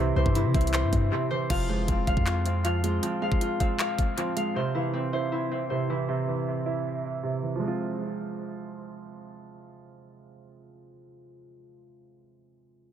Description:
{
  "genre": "hip hop, trap",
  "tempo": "157 BPM",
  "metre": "4/4",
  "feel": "half-time",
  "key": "F harmonic minor",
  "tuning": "A4 = 440 Hz",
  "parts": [
    { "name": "dark concert grand piano", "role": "accompaniment", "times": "0.0-12.9 s", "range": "C3 to F5", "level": "-30 LUFS", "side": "right 3 dB", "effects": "low-pass filter, dub echo" },
    { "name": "concert harp", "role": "arpeggios", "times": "0.0-8.5 s", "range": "C4 to F5", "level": "-32 LUFS", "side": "left 3 dB", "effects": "low-pass filter, dub echo" },
    { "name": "warm 808-style bass", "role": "bass", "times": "0.0-3.0 s", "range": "F1 to C3", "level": "-26 LUFS", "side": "equal", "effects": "none" },
    { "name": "trap drum kit", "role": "drums", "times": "0.3-4.5 s", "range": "crash cymbal, handclaps, hi-hat, kick drum", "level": "-30 LUFS", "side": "equal", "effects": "dub echo" }
  ],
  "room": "light reverb",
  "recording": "echo-heavy mix",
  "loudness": "-25 LUFS",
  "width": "side -9 dB against mid",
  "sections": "0.0-1.5 A section; 1.5-7.6 B section; 7.6-10.7 C section",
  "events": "break 1.1-1.5; filter sweep 1.5-7.6",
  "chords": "0.0 C; 1.5 Fm; 4.6 C; 7.6 Fm",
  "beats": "0.35 0.74 1.12 | 1.50 1.88 2.27 2.65 | 3.03 3.41 3.79 4.18 | 4.56 4.94 5.32 5.70 | 6.09 6.47 6.85 7.23 | 7.62 8.00 8.38 8.76 | 9.14 9.53 9.91 10.29"
}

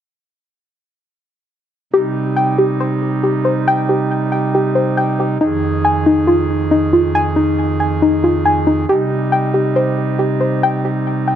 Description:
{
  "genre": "hip hop",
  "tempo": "138 BPM",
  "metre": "4/4",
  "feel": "half-time",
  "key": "C minor",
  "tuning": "A4 = 440 Hz",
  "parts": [
    { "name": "pipe organ, foundations", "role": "sustained chords", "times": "1.9-11.4 s", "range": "F2 to Ab4", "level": "-17 LUFS", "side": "right 2 dB", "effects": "none" },
    { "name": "soft round pluck", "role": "arpeggios", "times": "1.9-11.4 s", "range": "Eb4 to Ab5", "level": "-15 LUFS", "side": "left 1 dB", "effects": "chorus, tape echo" }
  ],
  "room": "light reverb, small room ambience",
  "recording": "dark, warm production",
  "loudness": "-13 LUFS",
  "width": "side -10 dB against mid",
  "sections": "1.9-11.4 A section",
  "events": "none",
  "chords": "1.9 Cm; 5.4 Fm7; 8.9 Cm",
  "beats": "| 1.93 2.37 2.80 3.24 | 3.67 4.11 4.54 4.98 | 5.41 5.85 6.28 6.71 | 7.15 7.58 8.02 8.45 | 8.89 9.32 9.76 10.19 | 10.63 11.06"
}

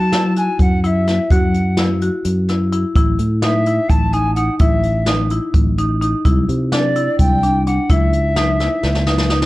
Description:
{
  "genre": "progressive instrumental, band music in an uneven meter",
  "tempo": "255 BPM (eighths)",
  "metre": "7/8",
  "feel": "straight",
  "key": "unclear",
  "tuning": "A4 = 440 Hz",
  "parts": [
    { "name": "wooden flute", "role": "melody", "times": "0.0-9.3 s", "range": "D5 to A5", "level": "-20 LUFS", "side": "equal", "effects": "digital delay" },
    { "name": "marimba with hard mallets", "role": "arpeggios", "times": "0.0-9.5 s", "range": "D4 to F#4", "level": "-21 LUFS", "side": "left 2 dB", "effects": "none" },
    { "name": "fingered electric bass", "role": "bass", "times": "0.0-9.4 s", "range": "A1 to F#3", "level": "-18 LUFS", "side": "equal", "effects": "none" },
    { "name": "jazz brush drum kit", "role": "drums", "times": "0.1-9.5 s", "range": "hi-hat, kick drum, snare drum", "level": "-17 LUFS", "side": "equal", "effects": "none" }
  ],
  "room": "light reverb",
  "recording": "worn, warbling old tape, cassette tape, warbly pitch drift",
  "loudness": "-14 LUFS",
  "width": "side -18 dB against mid",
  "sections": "0.0-9.5 A section",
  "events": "drum fill 8.8-9.5",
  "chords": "0.0 F#7(no3); 3.0 A5; 6.3 C; 7.9 C#m",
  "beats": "0.12 0.36 0.60 0.83 1.07 | 1.30 1.54 1.78 2.01 2.25 2.48 2.72 | 2.96 3.19 3.43 3.66 3.90 4.13 4.37 | 4.61 4.84 5.08 5.31 5.55 5.78 6.02 | 6.25 6.49 6.72 6.96 7.19 7.43 7.66 | 7.89 8.13 8.36 8.60 8.83 9.07 9.30"
}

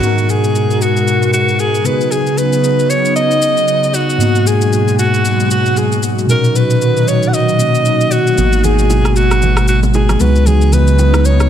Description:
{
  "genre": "amapiano",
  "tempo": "115 BPM",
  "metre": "4/4",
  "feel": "swing 58% on 16ths",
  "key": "G# minor",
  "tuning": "A4 = 440 Hz",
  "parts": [
    { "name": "breathy alto saxophone", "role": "melody", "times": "0.0-11.5 s", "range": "F#4 to F#5", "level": "-16 LUFS", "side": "equal", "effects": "analog delay" },
    { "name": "tine electric piano", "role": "accompaniment", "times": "0.0-11.5 s", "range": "G#2 to A#4", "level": "-16 LUFS", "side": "left 1 dB", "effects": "fast stereo tremolo" },
    { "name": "airy breathy pad", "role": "sustained chords", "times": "0.0-11.5 s", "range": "B2 to A#4", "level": "-17 LUFS", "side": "equal", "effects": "chorus" },
    { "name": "electronic shaker and rim click", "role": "drums", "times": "0.0-11.5 s", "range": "none", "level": "-24 LUFS", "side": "left 2 dB", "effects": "none" },
    { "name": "warm sub bass", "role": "bass", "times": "8.4-11.5 s", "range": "G#1 to C#2", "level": "-12 LUFS", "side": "equal", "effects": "none" },
    { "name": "congas and bongos", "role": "percussion", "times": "8.4-11.2 s", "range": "none", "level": "-24 LUFS", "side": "right 3 dB", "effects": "none" }
  ],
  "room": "moderate plate reverb, RT60 2.9 s",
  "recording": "dreamy mix soaked in reverb",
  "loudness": "-10 LUFS",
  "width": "side -10 dB against mid",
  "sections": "0.0-11.5 A section",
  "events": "kick muted 6.3-8.4",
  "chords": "0.0 G#m9; 1.9 C#9sus4; 4.2 G#m9; 6.3 Bmaj7; 8.4 G#m9; 10.2 C#9sus4",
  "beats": "| 0.03 0.55 1.07 1.59 | 2.12 2.64 3.16 3.68 | 4.20 4.73 5.25 5.77 | 6.29 6.81 7.33 7.86 | 8.38 8.90 9.42 9.94 | 10.46 10.99"
}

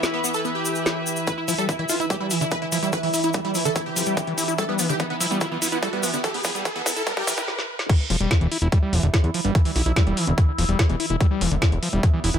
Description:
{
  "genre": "psychedelic trance",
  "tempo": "145 BPM",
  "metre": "4/4",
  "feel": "straight",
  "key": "E minor",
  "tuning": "A4 = 438 Hz",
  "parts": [
    { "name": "overtone-sweeping drone", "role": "sustained chords", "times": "0.0-12.4 s", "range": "E3 to E4", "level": "-31 LUFS", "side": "right 2 dB", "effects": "chorus, built-in reverb, sidechain pumping" },
    { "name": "drum and bass drum kit", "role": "drums", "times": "0.0-12.4 s", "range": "crash cymbal, hi-hat, snare drum", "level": "-27 LUFS", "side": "left 1 dB", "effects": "none" },
    { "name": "cabasa", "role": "percussion", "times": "0.0-7.5 s", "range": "none", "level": "-29 LUFS", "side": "left 2 dB", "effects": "none" },
    { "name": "warm symphonic string section", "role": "texture", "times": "0.0-7.5 s", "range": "E4 to E5", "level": "-32 LUFS", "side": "equal", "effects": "sidechain pumping" },
    { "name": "supersaw stab", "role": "melody", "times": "0.1-7.5 s", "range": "B3 to B4", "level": "-27 LUFS", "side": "right 1 dB", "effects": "phaser, sidechain pumping, digital delay" },
    { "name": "overdriven acid bass", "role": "riff", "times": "1.3-12.4 s", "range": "D3 to E4", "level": "-27 LUFS", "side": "moving between left 7 dB and right 6 dB", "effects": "distortion, auto-pan, sidechain pumping, digital delay" },
    { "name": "electronic kick drum", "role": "drums", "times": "1.3-12.1 s", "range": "none", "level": "-21 LUFS", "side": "equal", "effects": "high-pass filter on kick, high-pass filter on room" },
    { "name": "riser", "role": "sound effects", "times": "3.4-7.5 s", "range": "none", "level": "-32 LUFS", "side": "right 1 dB", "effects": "none" },
    { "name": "fat analog bass", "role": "bass", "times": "8.1-12.4 s", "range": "E1 to E2", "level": "-22 LUFS", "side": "equal", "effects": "none" }
  ],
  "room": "light reverb",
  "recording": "high-pass filter",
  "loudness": "-20 LUFS",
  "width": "side -9 dB against mid",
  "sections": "0.0-1.3 A section; 1.3-7.9 B section; 7.9-12.4 C section",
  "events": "build-up 1.3-7.9; filter sweep on acid bass 1.3-7.9; riser 3.4-7.5; drum fill 4.6-7.5, 7.5-7.9; stop 7.5-7.9; drop 7.9-12.4",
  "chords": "0.0 E5",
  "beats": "0.03 0.45 0.86 | 1.27 1.69 2.10 2.52 | 2.93 3.34 3.76 4.17 | 4.58 5.00 5.41 5.83 | 6.24 6.65 7.07 7.48 | 7.89 8.31 8.72 9.14 | 9.55 9.96 10.38 10.79 | 11.21 11.62 12.03"
}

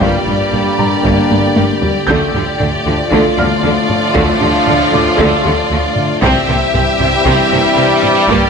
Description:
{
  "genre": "cinematic, hybrid orchestral and electronic film score",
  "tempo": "116 BPM",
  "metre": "4/4",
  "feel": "straight",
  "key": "D minor",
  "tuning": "A4 = 440 Hz",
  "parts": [
    { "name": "clear symphonic violin section", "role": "melody", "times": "0.0-8.5 s", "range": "D5 to E5", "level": "-20 LUFS", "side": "left 2 dB", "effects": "none" },
    { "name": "rich studio violin section", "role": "second line", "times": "0.0-8.5 s", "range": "F4 to G4", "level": "-18 LUFS", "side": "left 1 dB", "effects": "none" },
    { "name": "warm chamber viola section", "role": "accompaniment", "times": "0.0-8.5 s", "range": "F3 to C4", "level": "-20 LUFS", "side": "right 2 dB", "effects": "none" },
    { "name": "bright trombone section", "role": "sustained chords", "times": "0.0-8.5 s", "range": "G2 to G3", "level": "-20 LUFS", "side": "right 3 dB", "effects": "none" },
    { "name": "hollow soft pad", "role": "sustained chords", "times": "0.0-8.5 s", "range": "D3 to D5", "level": "-21 LUFS", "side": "equal", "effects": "chorus" },
    { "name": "warm French horn section", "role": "sustained chords", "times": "0.0-8.5 s", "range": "A3 to E4", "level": "-20 LUFS", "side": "left 3 dB", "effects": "none" },
    { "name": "smooth gliding synth bass", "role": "riff", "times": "0.0-8.4 s", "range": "C2 to G3", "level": "-22 LUFS", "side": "left 2 dB", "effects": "none" },
    { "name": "rich symphonic cello section", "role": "bass", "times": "0.0-8.4 s", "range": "G2 to D3", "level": "-19 LUFS", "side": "right 1 dB", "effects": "none" },
    { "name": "rich symphonic double bass section", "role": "bass", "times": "0.0-8.4 s", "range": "G1 to D2", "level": "-21 LUFS", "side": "right 2 dB", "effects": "none" },
    { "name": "taiko ensemble", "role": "drums", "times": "0.0-8.5 s", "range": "none", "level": "-22 LUFS", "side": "equal", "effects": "none" },
    { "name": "felt-muted upright piano", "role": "texture", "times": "0.0-8.3 s", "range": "F4 to G6", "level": "-24 LUFS", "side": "equal", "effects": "digital delay" }
  ],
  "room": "wet recital hall reverb, RT60 1.4 s",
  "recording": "nothing above 10.3 kHz",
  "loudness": "-10 LUFS",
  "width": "side -6 dB against mid",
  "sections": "0.0-8.5 A section",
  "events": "drum fill 1.3-2.1",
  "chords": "0.0 Gm; 2.1 Dm; 6.2 C",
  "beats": "| 0.01 0.53 1.05 1.57 | 2.08 2.60 3.12 3.64 | 4.15 4.67 5.19 5.71 | 6.22 6.74 7.26 7.77 | 8.29"
}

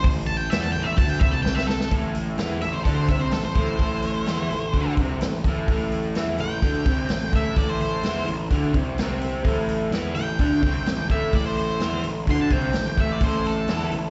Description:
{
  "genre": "blues rock power trio and southern rock",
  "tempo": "128 BPM",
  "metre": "4/4",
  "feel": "straight",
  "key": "A minor",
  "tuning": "A4 = 440 Hz",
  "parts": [
    { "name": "octave-fuzz lead guitar", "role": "melody", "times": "0.0-13.9 s", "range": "A4 to C6", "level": "-31 LUFS", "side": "equal", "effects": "distortion, slapback echo" },
    { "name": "fuzz picked electric bass", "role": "bass", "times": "0.0-14.1 s", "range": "A1 to E2", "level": "-30 LUFS", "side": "equal", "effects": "overdrive" },
    { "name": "vintage drum kit", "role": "drums", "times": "0.0-14.0 s", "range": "hi-hat, kick drum, snare drum", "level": "-27 LUFS", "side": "equal", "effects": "none" },
    { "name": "crunchy overdriven guitar", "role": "riff", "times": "1.9-14.1 s", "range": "A2 to E4", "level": "-29 LUFS", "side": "equal", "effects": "slapback echo" }
  ],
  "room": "studio reverb",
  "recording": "live gig heard through the venue's PA, recital hall reverb, nothing above 7.9 kHz",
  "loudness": "-23 LUFS",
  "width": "mono",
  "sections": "0.0-1.9 A section; 1.9-14.1 B section",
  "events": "lead electric guitar solo 0.0-1.9; drum fill 1.5-1.9",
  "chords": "0.0 Am",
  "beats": "| 0.04 0.51 0.98 1.45 | 1.92 2.39 2.86 3.33 | 3.80 4.27 4.75 5.22 | 5.69 6.16 6.63 7.10 | 7.57 8.04 8.51 8.98 | 9.45 9.92 10.39 10.86 | 11.34 11.81 12.28 12.75 | 13.22 13.69"
}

